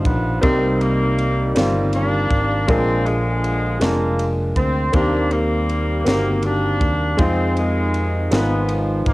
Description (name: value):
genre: slow gospel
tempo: 53 BPM (dotted quarters)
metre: 6/8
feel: straight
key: Eb major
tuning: A4 = 437 Hz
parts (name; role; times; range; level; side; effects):
- mellow horn section; melody; 0.0-9.1 s; C3 to D4; -22 LUFS; equal; cassette tape
- warm grand piano; accompaniment; 0.0-9.1 s; G2 to C5; -21 LUFS; equal; cassette tape
- fingered electric bass; bass; 0.1-9.1 s; F1 to F2; -22 LUFS; equal; none
- crisp fusion drum kit; drums; 0.1-9.1 s; kick drum, ride cymbal, snare drum; -22 LUFS; equal; none
room: light reverb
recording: home recording on cassette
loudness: -16 LUFS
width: side -20 dB against mid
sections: 0.0-9.1 A section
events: none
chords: 0.4 Cm7; 2.7 Bb7; 4.9 Eb6; 7.2 Fm7; 8.3 Abm6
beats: | 0.44 1.56 | 2.69 3.81 | 4.94 6.07 | 7.19 8.32